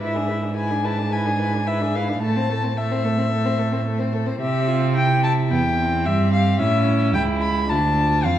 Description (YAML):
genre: quick classical-period movement for string quartet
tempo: 109 BPM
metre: 4/4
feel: straight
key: A minor, C major from 4.4 s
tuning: A4 = 441 Hz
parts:
  - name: warm violin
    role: melody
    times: 0.0-8.4 s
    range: E4 to C5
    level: -29 LUFS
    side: left 7 dB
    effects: none
  - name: dark violin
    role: second line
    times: 0.0-8.4 s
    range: E5 to B5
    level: -24 LUFS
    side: left 2 dB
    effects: none
  - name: warm viola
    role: accompaniment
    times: 0.0-8.4 s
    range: A3 to E4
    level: -26 LUFS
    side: right 1 dB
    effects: none
  - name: rich cello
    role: bass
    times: 0.0-8.4 s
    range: C#2 to C3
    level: -22 LUFS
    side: right 3 dB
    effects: none
room: wet recital hall reverb, RT60 1.5 s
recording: dark, warm production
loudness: -18 LUFS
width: side -11 dB against mid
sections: 0.0-8.4 A section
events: none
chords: 0.0 E7/G#; 2.2 Am; 4.4 C; 5.5 C/E; 6.6 A; 7.7 Dm7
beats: | 0.02 0.57 1.12 1.67 | 2.22 2.77 3.31 3.86 | 4.40 4.95 5.50 6.05 | 6.59 7.14 7.69 8.24